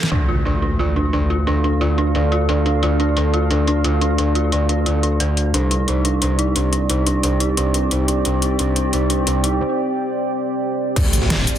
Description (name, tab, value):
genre	dark technical drum and bass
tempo	177 BPM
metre	4/4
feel	straight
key	D minor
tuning	A4 = 440 Hz
part	breakbeat sampler-style drum kit	drums	0.0-0.1, 11.0-11.6 s	hi-hat, snare drum	-30 LUFS	equal	none
part	dubstep drum kit	drums	0.0-11.6 s	cabasa, crash cymbal, hi-hat, snare drum	-24 LUFS	left 1 dB	overdrive, low-pass filter on hats, low-pass filter on snare, low-pass filter on cymbals, low-pass filter on perc, low-pass filter on room
part	deep dark ambient pad	sustained chords	1.1-11.6 s	C4 to F5	-22 LUFS	right 1 dB	chorus, built-in reverb, sidechain pumping
part	dark detuned synth bell	arpeggios	0.1-9.5 s	D4 to A4	-23 LUFS	right 1 dB	chorus, tremolo, sidechain pumping, low-pass filter, digital delay
part	metallic wobble bass	bass	0.1-11.5 s	C2 to D2	-19 LUFS	equal	chorus, tube saturation, sidechain pumping
part	impact	sound effects	0.1-1.5, 11.0-11.6 s	none	-23 LUFS	equal	none
part	electronic kick drum	drums	11.0 s	none	-19 LUFS	equal	overdrive
room	light reverb, digital ambience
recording	dense, heavily limited modern master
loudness	-16 LUFS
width	side -10 dB against mid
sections	0.1-11.0 A section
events	impact 0.1-1.5, 11.0-11.6; filter sweep on synth bell 0.1-11.0; break 9.6-11.0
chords	0.1 Dm; 5.5 C5; 11.0 Dm